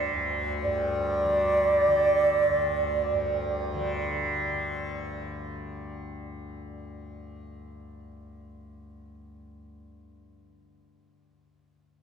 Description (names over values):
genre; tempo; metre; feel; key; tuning
indian classical, Hindustani; free time; none; none; unclear; A4 = 440 Hz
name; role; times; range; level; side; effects
mellow hollow bansuri; melody; 0.0-3.8 s; D5; -25 LUFS; right 2 dB; none
tanpura; drone; 0.0-10.9 s; D2 to D3; -32 LUFS; left 1 dB; none
room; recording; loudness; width
wet cathedral reverb, RT60 5.9 s; recorded in a church or concert hall; -24 LUFS; side -7 dB against mid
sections
0.6-4.3 A section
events
none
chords
none